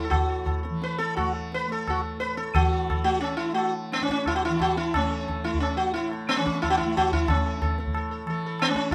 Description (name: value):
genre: indian classical, Hindustani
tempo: 175 BPM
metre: 7/4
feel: uneven beats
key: A raga bhupali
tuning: A4 = 440 Hz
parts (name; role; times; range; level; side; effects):
- sitar; melody; 0.0-8.9 s; B3 to B4; -28 LUFS; equal; none
- tanpura; drone; 0.0-8.9 s; A2 to A3; -35 LUFS; equal; none
- tabla; percussion; 0.1-8.9 s; none; -30 LUFS; equal; none
room: moderate studio reverb, RT60 0.6 s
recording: none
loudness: -26 LUFS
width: mono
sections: 0.0-2.6 A section; 2.6-8.9 B section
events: speeding up 0.0-8.9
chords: none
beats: | 0.10 0.45 0.81 1.16 1.51 1.86 2.21 | 2.56 2.90 3.25 3.59 3.93 4.27 4.61 | 4.95 5.29 5.62 5.96 6.29 6.62 6.95 | 7.28 7.61 7.94 8.26 8.59 8.91